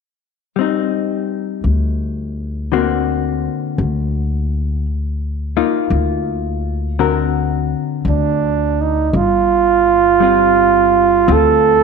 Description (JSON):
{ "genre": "jazz ballad", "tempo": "56 BPM", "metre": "4/4", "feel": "swing 67% on 8ths", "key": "G minor", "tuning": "A4 = 439 Hz", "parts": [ { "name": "hollow-body jazz guitar", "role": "accompaniment", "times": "0.6-11.8 s", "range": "D3 to Bb4", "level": "-19 LUFS", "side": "left 9 dB", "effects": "none" }, { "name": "upright bass", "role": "bass", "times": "1.6-11.8 s", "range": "G1 to D2", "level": "-19 LUFS", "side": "left 1 dB", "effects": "none" }, { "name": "breathy flugelhorn", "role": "melody", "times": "8.1-11.8 s", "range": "D4 to A4", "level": "-12 LUFS", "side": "right 8 dB", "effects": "none" } ], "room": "wet echo chamber reverb, RT60 1.7 s, studio reverb", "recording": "1960s-style stereo with parts hard left and right", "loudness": "-14 LUFS", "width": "side -5 dB against mid", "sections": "0.6-9.1 A section; 9.1-11.8 B section", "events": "none", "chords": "0.6 Cmadd9; 2.7 D7b13; 4.9 Bbadd11/D; 7.0 D7b13; 9.1 G7sus4" }